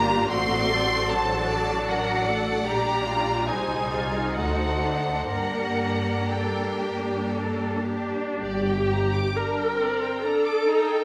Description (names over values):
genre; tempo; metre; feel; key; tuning
classical, slow romantic movement for string orchestra; 50-78 BPM; 3/4; rubato; G minor; A4 = 441 Hz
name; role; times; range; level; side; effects
rich studio violin section; melody; 0.0-11.0 s; D5 to D6; -31 LUFS; equal; none
rich studio violin section; second line; 0.0-11.0 s; C4 to D5; -33 LUFS; equal; none
rich studio viola section; accompaniment; 0.0-11.0 s; F#3 to Bb4; -29 LUFS; equal; none
rich studio cello section; bass; 0.0-9.2 s; G2 to Bb4; -33 LUFS; equal; none
rich studio double bass section; bass; 0.0-9.2 s; G1 to G2; -33 LUFS; equal; none
room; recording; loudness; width
wet concert hall reverb, RT60 2.0 s; none; -25 LUFS; mono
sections
0.0-8.4 A section; 8.4-11.0 B section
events
none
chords
0.3 D7/A; 2.7 Gm/Bb; 3.5 Ab/C; 4.4 D7; 5.3 Gm